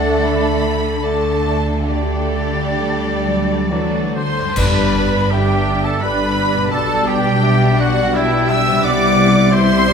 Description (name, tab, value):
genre	classical, slow romantic movement for symphony orchestra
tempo	65-88 BPM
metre	3/4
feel	rubato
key	G major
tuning	A4 = 440 Hz
part	rich studio violin section	melody	0.0-9.9 s	D5 to E6	-24 LUFS	left 2 dB	none
part	mellow hollow silver concert flute	second line	0.0-9.9 s	E5 to A6	-27 LUFS	left 2 dB	none
part	warm clarinet	second line	0.0-9.9 s	D4 to G5	-27 LUFS	left 2 dB	none
part	warm oboe	second line	0.0-9.9 s	E4 to E5	-25 LUFS	right 2 dB	none
part	warm studio violin section	second line	0.0-9.9 s	E4 to E5	-27 LUFS	equal	none
part	rich studio viola section	accompaniment	0.0-9.9 s	G3 to E4	-24 LUFS	equal	none
part	warm bassoon	accompaniment	0.0-4.2 s	F#3 to A3	-27 LUFS	right 4 dB	none
part	dark French horn section	sustained chords	0.0-9.9 s	A3 to A4	-23 LUFS	left 2 dB	none
part	concert harp	arpeggios	0.0-9.9 s	G2 to B4	-23 LUFS	left 5 dB	none
part	warm studio cello section	bass	0.0-9.9 s	G2 to G3	-24 LUFS	right 2 dB	none
part	warm studio double bass section	bass	0.0-9.9 s	G1 to D2	-22 LUFS	right 2 dB	none
part	mellow trumpet section	stabs	4.2-9.9 s	E4 to E5	-22 LUFS	right 2 dB	none
part	dark trombone section	sustained chords	4.6-9.9 s	B2 to G3	-26 LUFS	right 3 dB	none
part	clash cymbals and concert bass drum	percussion	4.6-6.0 s	none	-23 LUFS	equal	none
room	wet scoring stage reverb, RT60 1.9 s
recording	minimal, uncompressed stereo recording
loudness	-14 LUFS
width	side -6 dB against mid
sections	0.0-4.6 A section; 4.6-9.9 B section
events	band accent 4.6-5.3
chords	0.0 D5; 1.9 Dsus4; 3.7 D; 4.6 G; 6.7 G/B; 8.8 Cmaj7